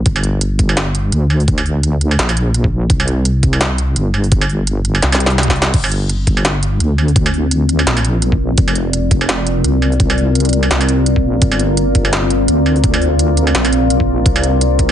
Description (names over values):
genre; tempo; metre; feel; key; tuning
half-time drum and bass; 169 BPM; 4/4; swing 56% on 16ths, half-time; G minor; A4 = 440 Hz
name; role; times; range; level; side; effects
deep soft wobble bass; bass; 0.0-14.9 s; F1 to D2; -15 LUFS; equal; chorus
electronic kick drum; drums; 0.1-14.9 s; none; -15 LUFS; equal; overdrive
industrial drum kit; drums; 0.1-14.9 s; crash cymbal, hi-hat, snare drum, struck metal; -18 LUFS; right 2 dB; none
swell; sound effects; 5.2-5.7 s; none; -25 LUFS; left 3 dB; none
deep dark ambient pad; sustained chords; 6.2-14.9 s; C4 to D5; -17 LUFS; left 1 dB; chorus, built-in reverb, sidechain pumping
room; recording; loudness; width
light reverb; heavily compressed radio sound, multiband compression, nothing above 10.3 kHz; -12 LUFS; side -10 dB against mid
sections
0.0-14.9 A section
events
drum fill 5.0-5.7; swell 5.2-5.7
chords
0.1 Gm; 2.9 C5; 5.7 Gm; 8.6 Fsus4; 11.4 Gm